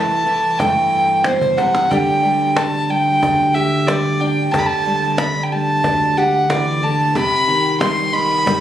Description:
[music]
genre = acoustic folk duo or small band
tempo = 92 BPM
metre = 4/4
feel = straight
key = G major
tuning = A4 = 441 Hz
[part]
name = warm fiddle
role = melody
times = 0.0-8.6 s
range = C5 to C6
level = -16 LUFS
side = equal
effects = none
[part]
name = nylon-string guitar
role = accompaniment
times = 0.0-8.6 s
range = B2 to G4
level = -21 LUFS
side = equal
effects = none
[part]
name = upright bass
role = bass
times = 0.0-8.6 s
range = C2 to G2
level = -25 LUFS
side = right 2 dB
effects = none
[part]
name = cajon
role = percussion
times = 0.6-8.6 s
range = none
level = -23 LUFS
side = right 1 dB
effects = none
[sound]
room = light reverb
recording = recorded on a phone in the room, club reverb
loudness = -14 LUFS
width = side -11 dB against mid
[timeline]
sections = 0.0-8.6 A section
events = drum fill 1.4-1.9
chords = 0.0 C6; 1.9 Gsus2/D; 7.2 Cm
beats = 0.59 1.25 | 1.90 2.56 3.21 3.87 | 4.53 5.18 5.84 6.50 | 7.15 7.81 8.46

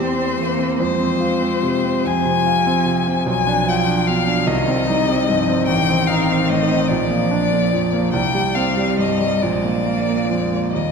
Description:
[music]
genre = classical, slow romantic movement for piano trio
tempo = 44-51 BPM (dotted quarters)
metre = 6/8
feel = rubato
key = unclear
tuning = A4 = 440 Hz
[part]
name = rich violin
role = melody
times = 0.0-10.9 s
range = C5 to G#5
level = -21 LUFS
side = left 6 dB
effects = none
[part]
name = rich cello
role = second line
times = 0.0-10.9 s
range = Eb3 to C4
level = -24 LUFS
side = right 5 dB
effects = none
[part]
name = clear concert grand piano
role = accompaniment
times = 0.0-10.9 s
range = A1 to G4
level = -19 LUFS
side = right 1 dB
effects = none
[sound]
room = wet concert hall reverb, RT60 2.6 s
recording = none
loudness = -16 LUFS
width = side -5 dB against mid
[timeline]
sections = 0.0-10.9 A section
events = none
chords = 0.0 C7/E; 0.8 Fm; 3.3 Bdim7; 4.5 Cm; 5.7 Am7b5; 6.9 Bb; 8.1 C5; 9.4 Bb7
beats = | 0.78 2.06 | 3.28 4.47 | 5.68 6.89 | 8.13 9.41 | 10.74

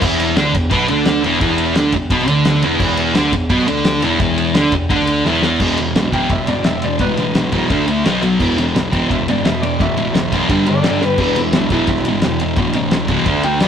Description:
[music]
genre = garage rock duo or trio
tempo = 172 BPM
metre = 4/4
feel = straight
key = E minor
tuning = A4 = 440 Hz
[part]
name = thick fuzz guitar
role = riff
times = 0.0-13.7 s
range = E2 to D4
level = -15 LUFS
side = equal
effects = distortion
[part]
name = growling picked electric bass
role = bass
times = 0.0-13.7 s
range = E1 to D2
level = -24 LUFS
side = equal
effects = overdrive, tube saturation
[part]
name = cloth-damped thuddy drum kit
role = drums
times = 0.0-13.7 s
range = crash cymbal, kick drum, ride cymbal, snare drum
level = -20 LUFS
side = left 1 dB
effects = none
[part]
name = clean lap steel guitar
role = melody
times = 6.1-13.7 s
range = E4 to G5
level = -22 LUFS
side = left 2 dB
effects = none
[sound]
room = moderate stone room reverb, RT60 1.2 s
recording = rough rehearsal-room recording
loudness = -13 LUFS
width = side -8 dB against mid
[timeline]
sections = 0.0-5.6 A section; 5.6-13.7 B section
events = drum fill 5.3-5.6, 11.0; electric slide guitar solo 5.6-13.7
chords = 0.0 E5; 7.7 D5; 8.1 B5; 8.4 E5; 10.5 G5; 11.2 E5; 13.3 D5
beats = | 0.03 0.37 0.72 1.07 | 1.42 1.77 2.12 2.46 | 2.81 3.16 3.51 3.86 | 4.21 4.56 4.91 5.26 | 5.61 5.96 6.31 6.66 | 7.01 7.36 7.71 8.06 | 8.41 8.76 9.11 9.46 | 9.80 10.15 10.50 10.85 | 11.20 11.54 11.89 12.23 | 12.58 12.93 13.27 13.62

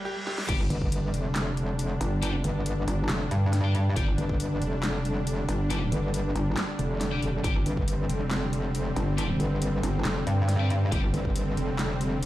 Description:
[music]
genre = heavy wobble dubstep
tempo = 138 BPM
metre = 4/4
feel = half-time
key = unclear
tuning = A4 = 439 Hz
[part]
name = bright baby grand piano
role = melody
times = 0.0-0.5 s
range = G3 to G4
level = -37 LUFS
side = right 1 dB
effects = tape echo
[part]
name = reverse cymbal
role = sound effects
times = 0.0-0.5 s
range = none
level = -37 LUFS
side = right 1 dB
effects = none
[part]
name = dubstep drum kit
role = drums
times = 0.3-12.3 s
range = crash cymbal, handclaps, hi-hat, snare drum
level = -34 LUFS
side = equal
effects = high-pass filter on hats, high-pass filter on snare, high-pass filter on cymbals
[part]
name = supersaw pad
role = sustained chords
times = 0.7-12.3 s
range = D3 to D4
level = -32 LUFS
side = right 1 dB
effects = sidechain pumping
[part]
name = high-gain distorted guitar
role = stabs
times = 0.5-11.0 s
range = G4 to G5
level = -38 LUFS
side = left 5 dB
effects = distortion, tape echo
[part]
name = metallic wobble bass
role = bass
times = 0.5-11.1 s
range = G1 to G2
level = -25 LUFS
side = equal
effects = chorus, overdrive
[part]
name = electronic kick drum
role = drums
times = 0.5-0.9, 4.0-4.4, 7.4-7.9, 10.9-11.3 s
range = none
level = -28 LUFS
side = equal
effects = none
[part]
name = metallic wobble bass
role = bass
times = 0.7-12.3 s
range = F1 to G1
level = -28 LUFS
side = equal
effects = chorus, overdrive
[sound]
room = little or no reverb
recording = played on a big sound system in a bare room, large studio reverb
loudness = -25 LUFS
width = side -15 dB against mid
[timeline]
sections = 0.5-12.3 A section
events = break 0.0-0.5; reverse cymbal 0.0-0.5; drum fill 0.3; drop 0.5-12.3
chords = 0.5 G5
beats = 0.05 | 0.49 0.92 1.35 1.79 | 2.23 2.66 3.09 3.53 | 3.96 4.40 4.83 5.27 | 5.70 6.14 6.57 7.01 | 7.44 7.88 8.31 8.75 | 9.18 9.62 10.05 10.49 | 10.92 11.36 11.79 12.22

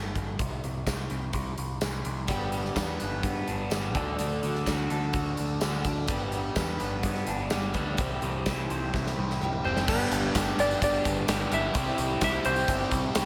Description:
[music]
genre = classic rock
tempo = 126 BPM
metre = 4/4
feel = straight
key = G major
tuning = A4 = 438 Hz
[part]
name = growling picked electric bass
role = bass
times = 0.0-13.3 s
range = F#1 to G2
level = -35 LUFS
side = equal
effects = overdrive
[part]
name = huge arena drum kit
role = drums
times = 0.2-13.3 s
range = crash cymbal, hi-hat, kick drum, snare drum, tambourine, toms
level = -34 LUFS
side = equal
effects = none
[part]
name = picked steel-string acoustic guitar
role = accompaniment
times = 2.3-13.3 s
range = G2 to A4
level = -41 LUFS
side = equal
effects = none
[part]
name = crunchy overdriven guitar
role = riff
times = 2.3-13.3 s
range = G2 to C5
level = -36 LUFS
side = equal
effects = none
[part]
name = overdriven semi-hollow guitar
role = riff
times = 2.3-13.3 s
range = G2 to C5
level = -37 LUFS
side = equal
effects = phaser
[part]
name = bluesy overdriven lead guitar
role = second line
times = 9.6-13.3 s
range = B3 to E4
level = -39 LUFS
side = equal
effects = distortion, digital delay
[part]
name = clean lap steel guitar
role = melody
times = 9.7-13.3 s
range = B4 to E5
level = -32 LUFS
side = equal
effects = none
[part]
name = distorted electric guitar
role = riff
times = 9.9-13.3 s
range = G2 to C4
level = -41 LUFS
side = equal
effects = none
[part]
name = tambourine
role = percussion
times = 9.9-13.3 s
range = none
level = -46 LUFS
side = equal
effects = none
[sound]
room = light reverb, studio ambience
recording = none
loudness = -29 LUFS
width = mono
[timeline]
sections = 0.0-9.9 A section; 9.9-13.3 B section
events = drum fill 8.9-9.9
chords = 0.4 N.C.; 2.3 G; 4.0 D; 6.1 G; 8.0 C; 9.9 G; 11.8 C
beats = | 0.39 0.87 1.34 1.82 | 2.29 2.77 3.24 3.72 | 4.19 4.67 5.14 5.62 | 6.09 6.57 7.04 7.52 | 7.99 8.47 8.94 9.41 | 9.88 10.35 10.82 11.29 | 11.76 12.22 12.69 13.15

